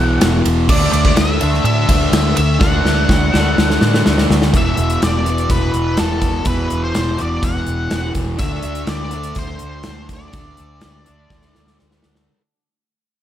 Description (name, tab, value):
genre	rock, shoegaze and dream pop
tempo	124 BPM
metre	4/4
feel	straight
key	unclear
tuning	A4 = 440 Hz
part	octave-fuzz lead guitar	melody	0.0-11.8 s	A4 to F#5	-23 LUFS	left 1 dB	distortion, slapback echo
part	fuzz guitar	riff	0.0-12.3 s	E2 to D4	-20 LUFS	equal	distortion, wide subtle chorus
part	vintage muted fingered electric bass	bass	0.0-12.3 s	E1 to A2	-19 LUFS	equal	none
part	gated 80s drum kit	drums	0.2-12.3 s	crash cymbal, hi-hat, kick drum, ride cymbal, snare drum	-17 LUFS	equal	none
room	light reverb, small room ambience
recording	none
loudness	-13 LUFS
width	side -11 dB against mid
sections	0.0-4.5 A section; 4.5-12.3 B section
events	drum fill 2.6-4.5, 11.3-12.3; fade-out 4.5-12.3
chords	0.0 Esus2; 0.7 D; 4.5 E5; 8.4 D5